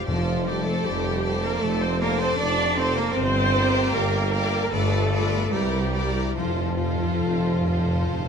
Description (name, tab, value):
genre	classical, slow romantic movement for symphony orchestra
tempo	68-79 BPM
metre	4/4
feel	rubato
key	F major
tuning	A4 = 438 Hz
part	rich chamber violin section	melody	0.0-8.3 s	C5 to D5	-34 LUFS	left 6 dB	none
part	dark chamber violin section	second line	0.0-8.3 s	E4 to C5	-31 LUFS	left 2 dB	none
part	rich chamber viola section	accompaniment	0.0-8.3 s	F4 to D5	-28 LUFS	right 2 dB	none
part	concert harp	arpeggios	0.0-8.3 s	F2 to F5	-30 LUFS	left 9 dB	none
part	rich chamber cello section	bass	0.0-8.3 s	F3 to D4	-27 LUFS	right 3 dB	none
part	rich chamber double bass section	bass	0.1-8.3 s	F1 to F2	-29 LUFS	right 2 dB	none
part	warm tuba	bass	0.1-8.3 s	F1 to C2	-30 LUFS	right 3 dB	none
part	timpani	percussion	0.1-1.2, 6.4-8.3 s	F2	-31 LUFS	left 1 dB	none
room	moderate scoring stage reverb, RT60 1.6 s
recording	none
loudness	-21 LUFS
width	side -6 dB against mid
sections	0.0-8.3 A section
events	timpani fill 6.4-8.3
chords	0.1 Dm7/F; 3.2 Gm; 4.7 G7; 5.5 C9; 6.4 F